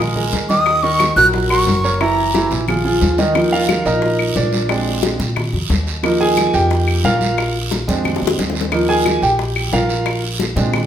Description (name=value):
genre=Afro-Cuban jazz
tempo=179 BPM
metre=4/4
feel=straight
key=Eb major from 3.4 s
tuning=A4 = 439 Hz
part: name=clear baby grand piano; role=accompaniment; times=0.0-10.8 s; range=D#3 to Ab5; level=-17 LUFS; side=right 2 dB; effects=none
part: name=upright bass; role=bass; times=0.0-10.9 s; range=F#1 to Bb2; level=-21 LUFS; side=equal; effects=none
part: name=congas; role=percussion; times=0.0-10.9 s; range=none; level=-26 LUFS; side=left 1 dB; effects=none
part: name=bongos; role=percussion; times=0.2-10.9 s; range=none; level=-25 LUFS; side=left 6 dB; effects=none
part: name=guiro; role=percussion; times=0.3-10.9 s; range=none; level=-27 LUFS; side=right 5 dB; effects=none
part: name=breathy bright concert flute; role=melody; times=0.5-2.5 s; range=A#5 to F#6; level=-15 LUFS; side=right 1 dB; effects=none
part: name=claves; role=percussion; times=0.7-10.9 s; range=none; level=-27 LUFS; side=left 4 dB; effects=none
room=wet large studio reverb, RT60 1.1 s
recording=band playing live in one room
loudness=-14 LUFS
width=side -10 dB against mid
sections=0.0-3.4 A section; 3.4-10.9 A section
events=flute solo 0.0-3.4; drum fill 2.5-3.4, 8.1-8.7; grand piano solo 3.4-10.9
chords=0.0 A#7sus4; 0.7 D#m7; 2.0 F#7; 2.7 A#5; 3.4 Ebsus2; 4.7 Bb7; 6.0 Ebsus2; 7.4 Bb7; 8.7 Ebsus2; 10.1 Bb7